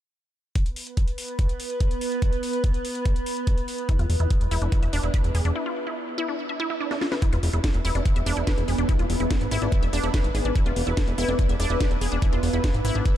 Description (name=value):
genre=psychedelic trance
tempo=144 BPM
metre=4/4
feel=straight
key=E major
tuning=A4 = 439 Hz
part: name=evolving wavetable pad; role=sustained chords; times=0.9-13.2 s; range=B3 to B4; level=-30 LUFS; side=equal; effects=chorus, built-in reverb, sidechain pumping
part: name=electronic kick drum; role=drums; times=0.6-13.1 s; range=none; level=-22 LUFS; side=equal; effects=none
part: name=techno drum kit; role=drums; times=0.6-13.1 s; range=hi-hat, snare drum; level=-34 LUFS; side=left 1 dB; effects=none
part: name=wide unison pluck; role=riff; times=3.9-13.0 s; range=D4 to E5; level=-29 LUFS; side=equal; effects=auto-pan, sidechain pumping, tape echo
part: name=fat analog bass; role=bass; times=4.0-13.0 s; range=E1 to G#1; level=-24 LUFS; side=equal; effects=none
room=light reverb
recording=none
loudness=-22 LUFS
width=side -12 dB against mid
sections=0.6-7.2 A section; 7.2-13.2 B section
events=break 5.6-7.2; drum fill 6.9-7.2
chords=0.6 E5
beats=| 0.56 0.97 1.39 1.80 | 2.22 2.64 3.06 3.47 | 3.89 4.30 4.72 5.14 | 5.55 5.97 6.39 6.80 | 7.22 7.64 8.05 8.47 | 8.89 9.30 9.72 10.14 | 10.55 10.97 11.39 11.80 | 12.22 12.64 13.05